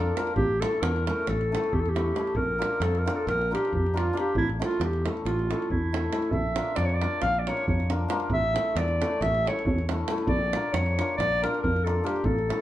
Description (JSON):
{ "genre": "balkan folk, Balkan wedding band", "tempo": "273 BPM (eighths)", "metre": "9/8", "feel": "straight", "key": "unclear", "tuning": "A4 = 441 Hz", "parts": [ { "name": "warm clarinet", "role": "melody", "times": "0.0-12.6 s", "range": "E4 to F5", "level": "-27 LUFS", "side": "equal", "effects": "none" }, { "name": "hammered dulcimer", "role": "accompaniment", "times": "0.0-12.6 s", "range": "A3 to Bb4", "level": "-32 LUFS", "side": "left 3 dB", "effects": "none" }, { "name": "fretless electric bass", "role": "bass", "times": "0.0-12.5 s", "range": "A1 to F2", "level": "-29 LUFS", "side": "equal", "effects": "none" }, { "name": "davul", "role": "percussion", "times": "0.2-12.6 s", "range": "none", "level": "-32 LUFS", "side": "right 2 dB", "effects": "none" } ], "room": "moderate large studio reverb, RT60 0.9 s", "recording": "band playing live in one room", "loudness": "-24 LUFS", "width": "side -13 dB against mid", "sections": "0.0-12.6 A section", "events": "none", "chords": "0.4 A; 2.4 Bb; 4.4 A; 6.3 Bb; 8.3 A; 10.3 Bb" }